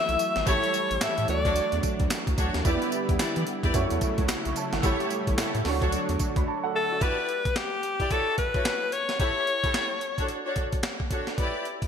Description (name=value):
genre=R&B, new jack swing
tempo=110 BPM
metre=4/4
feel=swing 61% on 16ths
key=E dorian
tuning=A4 = 440 Hz
part: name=edgy alto saxophone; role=melody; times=0.0-1.8, 6.8-10.3 s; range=G4 to E5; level=-27 LUFS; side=left 3 dB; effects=ping-pong delay
part: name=clear grand piano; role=accompaniment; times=0.0-7.2 s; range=A3 to C#6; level=-31 LUFS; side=right 4 dB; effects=ensemble chorus
part: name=warm analog pad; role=sustained chords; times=0.0-7.0 s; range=C#3 to E4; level=-34 LUFS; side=equal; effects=chorus
part: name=round analog bass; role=bass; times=0.1-6.4 s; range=G#1 to E3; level=-30 LUFS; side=equal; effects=none
part: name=breakbeat sampler-style drum kit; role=drums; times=0.1-11.9 s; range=handclaps, hi-hat, kick drum, snare drum, tambourine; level=-29 LUFS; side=equal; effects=gated reverb
part: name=clear studio string section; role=stabs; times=0.5-11.6 s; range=D4 to D5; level=-32 LUFS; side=equal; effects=ping-pong delay
room=moderate lush hall reverb, RT60 1.8 s, digital ambience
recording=bright 1980s-style digital production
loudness=-24 LUFS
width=side -7 dB against mid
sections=0.0-7.0 A section; 7.0-11.9 B section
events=silent gap 6.5-7.0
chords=0.5 A7; 1.3 Dmaj7; 2.6 Em7; 3.7 F#m7; 4.8 A7; 5.7 Dmaj7; 7.0 Em7; 8.1 F#m7; 9.2 A7; 10.0 Dmaj7; 11.4 Em7